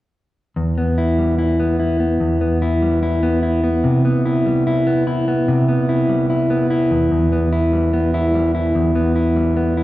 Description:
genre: indie pop.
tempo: 147 BPM.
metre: 4/4.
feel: straight.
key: E minor.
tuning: A4 = 440 Hz.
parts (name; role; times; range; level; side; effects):
mellow electric guitar; solo; 0.6-9.8 s; E2 to E4; -15 LUFS; equal; none.
room: wet recital hall reverb, RT60 1.8 s.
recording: recorded in a church or concert hall.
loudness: -15 LUFS.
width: side -16 dB against mid.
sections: 0.6-7.1 A section; 7.1-9.8 B section.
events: none.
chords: 0.6 Em; 3.8 Cmaj7; 6.9 N.C.; 7.1 Em.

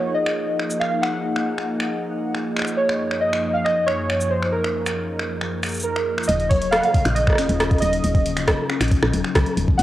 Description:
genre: IDM.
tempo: 137 BPM.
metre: 4/4.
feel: straight.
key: Eb minor.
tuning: A4 = 438 Hz.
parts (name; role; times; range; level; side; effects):
warbly lo-fi synth keys; melody; 0.0-9.8 s; Bb4 to Gb5; -23 LUFS; right 1 dB; chorus, cassette tape, tape echo, shimmer reverb.
warbly tape-like pad; sustained chords; 0.0-9.8 s; Gb2 to Eb5; -27 LUFS; equal; chorus, built-in reverb, phaser, cassette tape, shimmer reverb.
booming analog drum machine; drums; 0.3-9.8 s; cabasa, finger snaps, hi-hat, rim click; -26 LUFS; equal; cassette tape.
kalimba; arpeggios; 6.3-9.8 s; Db3 to Db4; -26 LUFS; left 6 dB; vintage 12-bit sampler grit, cassette tape, tape echo, shimmer reverb.
woody FM bass; bass; 6.3-9.8 s; Eb1 to Db2; -22 LUFS; equal; tube saturation.
electronic kick drum; drums; 6.5-9.8 s; none; -18 LUFS; equal; cassette tape.
room: wet booth ambience, RT60 0.2 s.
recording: home recording on cassette.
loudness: -19 LUFS.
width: side -14 dB against mid.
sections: 0.0-6.3 A section; 6.3-9.8 B section.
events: none.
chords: 0.0 Ebm; 2.8 Gbmaj7; 6.3 Eb7(no3).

